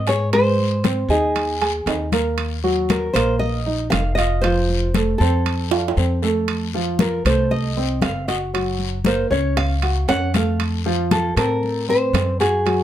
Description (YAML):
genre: latin, Cuban son and guajira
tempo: 117 BPM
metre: 4/4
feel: straight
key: unclear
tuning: A4 = 439 Hz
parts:
  - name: nylon-string guitar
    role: melody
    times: 0.0-12.8 s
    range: Ab4 to Gb5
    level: -22 LUFS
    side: left 1 dB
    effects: none
  - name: upright bass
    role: bass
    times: 0.0-12.8 s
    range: F1 to A2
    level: -23 LUFS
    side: equal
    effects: none
  - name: dark baby grand piano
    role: arpeggios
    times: 0.1-12.8 s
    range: F3 to A5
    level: -22 LUFS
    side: right 2 dB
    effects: none
  - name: congas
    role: percussion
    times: 0.1-12.8 s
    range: none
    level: -23 LUFS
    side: left 3 dB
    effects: none
  - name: guiro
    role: percussion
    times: 0.1-12.8 s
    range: none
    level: -33 LUFS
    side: left 9 dB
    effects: none
  - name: timbales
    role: percussion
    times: 0.1-12.8 s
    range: none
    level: -26 LUFS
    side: right 8 dB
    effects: none
room: light reverb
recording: none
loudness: -17 LUFS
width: side -11 dB against mid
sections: 0.0-12.8 A section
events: drum fill 5.7-6.5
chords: 0.3 Abadd9; 2.4 Ebmadd9; 4.4 F; 8.5 Gb; 10.6 F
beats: | 0.33 0.84 1.35 1.86 | 2.38 2.89 3.40 3.92 | 4.43 4.94 5.46 5.97 | 6.49 7.00 7.51 8.03 | 8.54 9.05 9.57 10.08 | 10.60 11.11 11.63 12.14 | 12.66